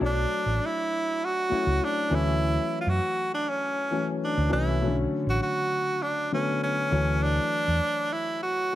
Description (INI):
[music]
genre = lush 1970s-style soul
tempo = 100 BPM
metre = 4/4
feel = straight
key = unclear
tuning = A4 = 440 Hz
[part]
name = warm grand piano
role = accompaniment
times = 0.0-8.8 s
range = C#3 to C#5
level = -30 LUFS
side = left 4 dB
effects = none
[part]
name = hollow-body short-scale fingered electric bass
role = bass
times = 0.0-7.8 s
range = A1 to F#2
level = -26 LUFS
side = equal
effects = none
[part]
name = breathy tenor saxophone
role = melody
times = 0.1-8.8 s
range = C#4 to F#4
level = -26 LUFS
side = right 1 dB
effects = none
[sound]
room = light reverb, studio ambience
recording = none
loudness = -24 LUFS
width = side -14 dB against mid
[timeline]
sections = 0.0-8.8 A section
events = none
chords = 0.0 Bm7 (rootless); 2.1 Dmaj9; 4.8 Bm7; 6.9 Dmaj9